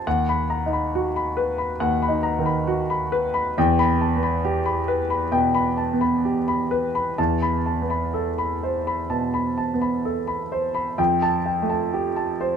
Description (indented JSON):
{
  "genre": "neoclassical minimalist piano",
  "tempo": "62-70 BPM",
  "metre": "4/4",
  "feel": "rubato",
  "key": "unclear",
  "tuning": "A4 = 440 Hz",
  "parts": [
    { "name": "clear grand piano", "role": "solo", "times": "0.0-12.6 s", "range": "D#2 to B5", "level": "-20 LUFS", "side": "equal", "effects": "none" }
  ],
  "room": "moderate studio ambience, RT60 0.5 s",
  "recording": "minimal, uncompressed stereo recording",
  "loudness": "-20 LUFS",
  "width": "side -7 dB against mid",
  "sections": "0.0-12.6 A section",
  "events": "none",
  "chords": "0.1 B/D#; 3.6 Em; 7.2 Amadd9/E; 11.0 Fadd9"
}